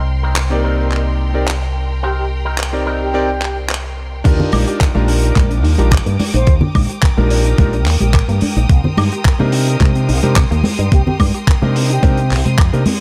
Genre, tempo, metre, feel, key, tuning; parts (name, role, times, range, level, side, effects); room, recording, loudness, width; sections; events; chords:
nu-disco, nu disco; 108 BPM; 4/4; straight; C minor; A4 = 440 Hz
clear studio string section; sustained chords; 0.0-13.0 s; Bb4 to Eb6; -31 LUFS; equal; sidechain pumping
electric guitar with an envelope filter; riff; 0.0-3.9 s; C4 to Bb4; -30 LUFS; equal; analog chorus, analog delay
fingered electric bass with an envelope filter; bass; 0.0-12.8 s; Bb1 to C3; -18 LUFS; equal
damped 70s drum kit; drums; 0.4-13.0 s; crash cymbal, handclaps, hi-hat, woodblock; -24 LUFS; equal
mellow concert flute; melody; 0.5-12.5 s; G4 to C5; -28 LUFS; equal; analog delay
bright electric grand piano; accompaniment; 0.5-12.8 s; Bb3 to D5; -24 LUFS; equal; sidechain pumping, analog delay
unison pluck; arpeggios; 4.3-12.9 s; Bb3 to Bb4; -28 LUFS; equal; sidechain pumping, analog delay
electronic kick drum; drums; 4.3-12.7 s; -15 LUFS; equal
congas; percussion; 4.4-13.0 s; -23 LUFS; equal
studio ambience; -15 LUFS; mono
0.0-4.3 A section; 4.3-13.0 B section
filter sweep on clean electric guitar 0.0-4.3; drop 4.3-13.0
0.0 Cm7; 4.3 Ebmaj7; 8.7 Cm7